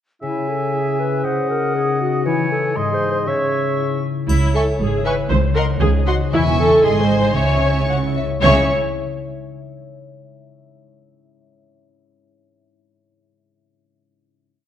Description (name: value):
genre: cinematic, playful, whimsical film cue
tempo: 118 BPM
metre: 2/4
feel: straight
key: C# minor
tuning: A4 = 439 Hz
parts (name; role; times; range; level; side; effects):
- clear oboe; second line; 0.2-4.0 s; C#5 to E5; -26 LUFS; equal; none
- mellow clarinet; second line; 0.2-3.8 s; E4 to C#5; -23 LUFS; left 1 dB; none
- silver concert flute; second line; 0.2-4.0 s; F#5 to C#6; -27 LUFS; left 1 dB; none
- mellow bassoon; accompaniment; 0.2-4.0 s; C#3 to G#3; -24 LUFS; right 1 dB; none
- concert harp; arpeggios; 0.2-9.5 s; G#2 to E5; -24 LUFS; left 5 dB; none
- warm studio viola section; accompaniment; 4.3-8.7 s; E4 to C#5; -19 LUFS; right 1 dB; none
- dark studio double bass section; bass; 4.3-8.7 s; E1 to C#2; -21 LUFS; right 2 dB; none
- warm studio cello section; bass; 4.3-8.7 s; C#2 to C#3; -21 LUFS; right 2 dB; none
- triangle; percussion; 4.3-5.3 s; none; -39 LUFS; left 2 dB; none
- warm studio violin section; second line; 4.5-8.7 s; G#4 to G#5; -24 LUFS; left 1 dB; none
- dark studio violin section; melody; 4.6-8.7 s; C6 to C#6; -26 LUFS; left 2 dB; none
room: wet scoring stage reverb, RT60 1.5 s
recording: dark, warm production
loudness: -16 LUFS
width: side -10 dB against mid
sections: 0.2-4.3 A section; 4.3-8.4 A section; 8.4-9.5 final chord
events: none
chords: 0.2 C#m; 1.2 F#69/C#; 2.3 C#m/E; 2.8 G#; 3.3 C#m; 5.3 Cdim/C#; 6.3 C#m/E; 6.8 G#; 7.4 C#m